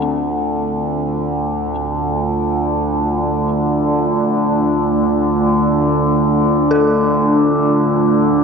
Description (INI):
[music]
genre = dark ambient drone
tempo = free time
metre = none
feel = none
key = D minor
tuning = A4 = 440 Hz
[part]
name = deep dark ambient pad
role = sustained chords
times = 0.0-8.4 s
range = A3 to D5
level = -17 LUFS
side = equal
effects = chorus, built-in reverb
[part]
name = dark detuned synth bell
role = arpeggios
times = 0.0-8.4 s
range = C4 to A4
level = -23 LUFS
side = left 4 dB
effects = chorus, ping-pong delay
[part]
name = overtone-sweeping drone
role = drone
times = 0.0-8.4 s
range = D2 to D3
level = -18 LUFS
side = right 1 dB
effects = chorus, built-in reverb
[sound]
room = wet cathedral reverb, RT60 5.9 s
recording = cassette tape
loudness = -14 LUFS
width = side -5 dB against mid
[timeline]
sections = 0.0-8.4 A section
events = none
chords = 0.0 Dm